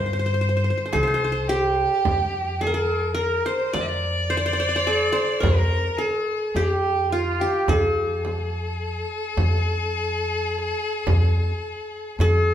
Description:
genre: Arabic maqam ensemble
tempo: 106 BPM (eighths)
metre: 10/8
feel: straight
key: F maqam rast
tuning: A4 = 440 Hz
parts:
  - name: qanun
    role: melody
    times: 0.0-12.5 s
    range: F4 to D5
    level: -24 LUFS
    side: equal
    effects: none
  - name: rich violin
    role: second line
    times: 0.0-12.5 s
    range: F4 to Eb5+50c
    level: -26 LUFS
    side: equal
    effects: none
  - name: upright bass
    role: bass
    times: 0.0-12.5 s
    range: C2 to G2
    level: -24 LUFS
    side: equal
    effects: none
  - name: frame drum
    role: percussion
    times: 0.9-12.5 s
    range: none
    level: -29 LUFS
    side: right 2 dB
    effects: none
room: wet large studio reverb, RT60 1.2 s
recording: band playing live in one room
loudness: -20 LUFS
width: side -10 dB against mid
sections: 0.0-2.1 A section; 2.1-12.5 B section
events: none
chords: none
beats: 0.37 0.93 1.49 | 2.05 2.62 3.18 3.74 4.30 4.87 5.43 5.99 6.55 7.12 | 7.68 8.24 8.81 9.37 9.94 10.50 11.06 11.63 12.19

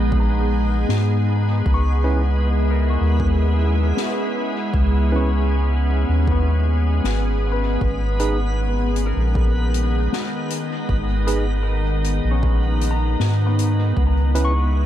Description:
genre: ambient dub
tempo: 78 BPM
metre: 4/4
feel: straight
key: G# minor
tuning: A4 = 436 Hz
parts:
  - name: soft additive organ-like pad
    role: sustained chords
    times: 0.0-14.9 s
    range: D#3 to G#4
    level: -24 LUFS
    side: equal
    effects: ensemble chorus, built-in reverb
  - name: concert harp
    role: arpeggios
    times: 0.0-14.9 s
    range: B3 to C#6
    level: -32 LUFS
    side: left 4 dB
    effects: low-pass filter, dub echo
  - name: soft dub sub bass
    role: bass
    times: 0.0-14.9 s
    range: G#1 to G#2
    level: -19 LUFS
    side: equal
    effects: tube saturation
  - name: backwards swelling texture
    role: texture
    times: 0.0-14.9 s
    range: B3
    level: -33 LUFS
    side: equal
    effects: built-in reverb
  - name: electronic kick drum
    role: drums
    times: 0.1-14.1 s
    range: none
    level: -23 LUFS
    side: equal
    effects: overdrive
  - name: soft-mallet drum kit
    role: drums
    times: 0.9-14.5 s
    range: hi-hat, snare drum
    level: -30 LUFS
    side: left 6 dB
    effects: dub echo
  - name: tine electric piano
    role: stabs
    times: 2.0-14.5 s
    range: C#4 to B4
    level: -31 LUFS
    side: right 4 dB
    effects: none
room: light reverb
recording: none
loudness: -17 LUFS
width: side -11 dB against mid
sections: 0.0-14.9 A section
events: none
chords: 0.0 G#m; 1.7 C#m7; 7.8 G#m; 14.0 C#m7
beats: 0.12 0.89 | 1.66 2.43 3.20 3.97 | 4.74 5.51 6.28 7.04 | 7.81 8.58 9.35 10.12 | 10.89 11.66 12.43 13.20 | 13.97 14.74

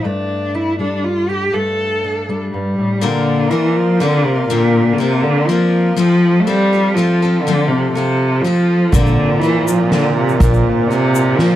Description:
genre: indie folk with a building arrangement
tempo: 122 BPM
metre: 3/4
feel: straight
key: unclear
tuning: A4 = 440 Hz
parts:
  - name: warm cello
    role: melody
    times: 0.0-11.6 s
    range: Bb2 to A4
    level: -14 LUFS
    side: equal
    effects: none
  - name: fingerpicked steel-string acoustic guitar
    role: accompaniment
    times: 0.0-3.0 s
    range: G2 to A4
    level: -22 LUFS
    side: left 1 dB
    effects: none
  - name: picked steel-string acoustic guitar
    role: accompaniment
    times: 3.0-11.6 s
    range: Bb2 to Bb4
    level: -20 LUFS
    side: left 6 dB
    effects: plate reverb
  - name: pedal harmonium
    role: sustained chords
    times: 3.0-11.6 s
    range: F4 to C6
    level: -26 LUFS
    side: right 2 dB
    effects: plate reverb
  - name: bright trombone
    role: second line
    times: 8.9-11.6 s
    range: Bb2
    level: -21 LUFS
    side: right 7 dB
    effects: plate reverb
  - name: upright bass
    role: bass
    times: 8.9-10.6 s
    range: Bb1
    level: -15 LUFS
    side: right 1 dB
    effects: none
  - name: soft-mallet drum kit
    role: drums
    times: 8.9-11.5 s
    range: kick drum, ride cymbal, snare drum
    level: -20 LUFS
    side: right 1 dB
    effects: none
  - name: tube shaker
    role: percussion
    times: 8.9-11.3 s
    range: none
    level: -31 LUFS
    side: left 12 dB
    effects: none
room: light reverb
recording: dark, warm production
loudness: -13 LUFS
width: side -12 dB against mid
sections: 0.0-3.0 A section; 3.0-11.6 B section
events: none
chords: 0.0 Gsus2; 3.0 Bbadd9; 6.0 F; 8.9 Bbadd9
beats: | 0.04 0.53 1.03 | 1.53 2.03 2.52 | 3.02 3.51 4.01 | 4.50 5.00 5.49 | 5.98 6.47 6.96 | 7.46 7.95 8.44 | 8.93 9.43 9.92 | 10.41 10.90 11.39

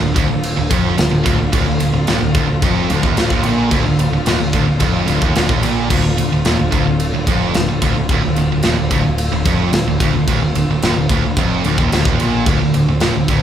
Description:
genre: heavy metal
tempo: 110 BPM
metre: 4/4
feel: straight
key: D minor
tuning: A4 = 444 Hz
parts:
  - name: rich symphonic string section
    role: sustained chords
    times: 0.0-13.4 s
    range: D3 to F4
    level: -26 LUFS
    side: left 1 dB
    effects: none
  - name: high-gain distorted guitar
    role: riff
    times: 0.0-13.4 s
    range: D2 to Bb2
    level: -19 LUFS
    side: right 7 dB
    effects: distortion
  - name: sludgy distorted guitar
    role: riff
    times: 0.0-13.4 s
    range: D2 to Bb2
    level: -20 LUFS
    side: left 5 dB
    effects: overdrive
  - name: growling picked electric bass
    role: bass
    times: 0.0-13.4 s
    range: D1 to Bb1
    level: -21 LUFS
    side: equal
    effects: overdrive
  - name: tight metal drum kit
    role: drums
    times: 0.2-13.4 s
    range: crash cymbal, kick drum, ride cymbal, snare drum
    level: -18 LUFS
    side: equal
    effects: none
room: moderate large studio reverb, RT60 1.0 s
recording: band playing live in one room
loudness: -13 LUFS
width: side -9 dB against mid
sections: 0.0-13.4 A section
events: none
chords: 0.0 Dm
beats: 0.44 0.99 | 1.54 2.08 2.63 3.18 | 3.72 4.27 4.82 5.36 | 5.91 6.45 7.00 7.55 | 8.09 8.64 9.18 9.73 | 10.28 10.82 11.37 11.91 | 12.46 13.01

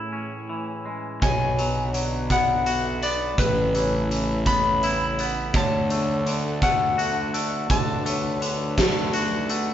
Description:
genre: post-rock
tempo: 56 BPM (dotted quarters)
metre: 6/8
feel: straight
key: unclear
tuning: A4 = 441 Hz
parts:
  - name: analog string pad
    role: sustained chords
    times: 0.0-9.7 s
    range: A2 to B4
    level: -34 LUFS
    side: equal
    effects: ensemble chorus
  - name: twangy electric guitar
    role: arpeggios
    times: 0.0-9.7 s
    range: A2 to F#4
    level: -29 LUFS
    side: left 2 dB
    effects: none
  - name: electric slide guitar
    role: melody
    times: 1.2-8.7 s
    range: B4 to B5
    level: -25 LUFS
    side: left 3 dB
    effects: none
  - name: vibraphone with medium hard mallets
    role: arpeggios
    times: 1.2-9.7 s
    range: C#5 to F#5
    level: -31 LUFS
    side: right 1 dB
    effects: none
  - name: fuzz fingered electric bass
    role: bass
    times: 1.2-9.7 s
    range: A1 to D2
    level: -28 LUFS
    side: right 1 dB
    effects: overdrive
  - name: big rock drum kit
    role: drums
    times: 1.2-9.7 s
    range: hi-hat, kick drum, snare drum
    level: -26 LUFS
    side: right 1 dB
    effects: none
room: wet studio reverb, RT60 0.6 s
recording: band playing live in one room, nothing above 7.6 kHz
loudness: -21 LUFS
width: side -10 dB against mid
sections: 0.0-1.2 A section; 1.2-9.7 B section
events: none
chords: 0.0 Amaj7; 1.2 Bm; 3.4 Aadd9; 5.5 D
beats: 0.15 | 1.23 2.30 | 3.38 4.46 | 5.54 6.62 | 7.70 8.77

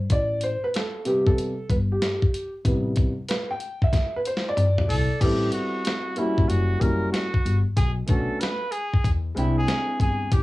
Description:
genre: hip hop, jazz-hop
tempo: 94 BPM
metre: 4/4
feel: swing 65% on 16ths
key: A dorian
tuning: A4 = 438 Hz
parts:
  - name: upright bass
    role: bass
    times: 0.0-10.4 s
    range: F#1 to E2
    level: -25 LUFS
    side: left 1 dB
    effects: none
  - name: dark grand piano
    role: accompaniment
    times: 0.1-10.3 s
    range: C3 to G5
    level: -26 LUFS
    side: equal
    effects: cassette tape
  - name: dusty soul sampler-style drum kit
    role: drums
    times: 0.1-10.4 s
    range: crash cymbal, hi-hat, kick drum, snare drum, toms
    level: -23 LUFS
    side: equal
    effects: cassette tape
  - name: warm trumpet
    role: melody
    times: 4.9-10.4 s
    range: E4 to B4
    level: -28 LUFS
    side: equal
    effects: cassette tape
room: light reverb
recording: home recording on cassette, small room ambience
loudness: -21 LUFS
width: side -18 dB against mid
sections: 0.0-5.2 A section; 5.2-10.4 B section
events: grand piano solo 0.0-5.2; drum fill 3.9-5.2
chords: 0.1 Am9; 6.5 F#7b9; 7.8 Bm9; 9.0 E7alt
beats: | 0.10 0.74 1.38 2.02 | 2.66 3.29 3.93 4.57 | 5.21 5.85 6.49 7.12 | 7.76 8.40 9.04 9.68 | 10.31

